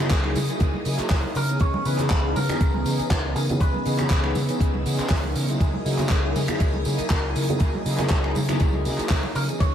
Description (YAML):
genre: nu-disco, nu disco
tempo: 120 BPM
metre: 4/4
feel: swing 54% on 16ths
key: unclear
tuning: A4 = 438 Hz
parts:
  - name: mellow synth brass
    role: accompaniment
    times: 0.0-9.7 s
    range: E3 to A#4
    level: -28 LUFS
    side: left 1 dB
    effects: chorus, sidechain pumping, tape echo
  - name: string machine, full ensemble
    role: sustained chords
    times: 0.0-9.7 s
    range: B3 to E6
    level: -34 LUFS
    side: left 1 dB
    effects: phaser, ensemble chorus, sidechain pumping
  - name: overdriven fingered electric bass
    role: bass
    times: 0.0-9.7 s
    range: C#2 to C#3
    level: -26 LUFS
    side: equal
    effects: none
  - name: damped 70s drum kit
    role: drums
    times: 0.0-9.7 s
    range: crash cymbal, finger snaps, handclaps, hi-hat, tambourine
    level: -29 LUFS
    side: equal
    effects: tape echo
  - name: electronic kick drum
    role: drums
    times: 0.1-9.7 s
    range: none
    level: -22 LUFS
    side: equal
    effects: none
  - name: congas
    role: percussion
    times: 0.2-9.3 s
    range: none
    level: -32 LUFS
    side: right 4 dB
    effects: none
  - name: electric guitar with an envelope filter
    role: melody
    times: 1.4-5.1, 9.4-9.7 s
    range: G#4 to C#5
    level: -31 LUFS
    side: equal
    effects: tape echo
room: light reverb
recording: echo-heavy mix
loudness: -20 LUFS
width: side -9 dB against mid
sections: 0.0-9.7 A section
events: none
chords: 0.0 F#13/C#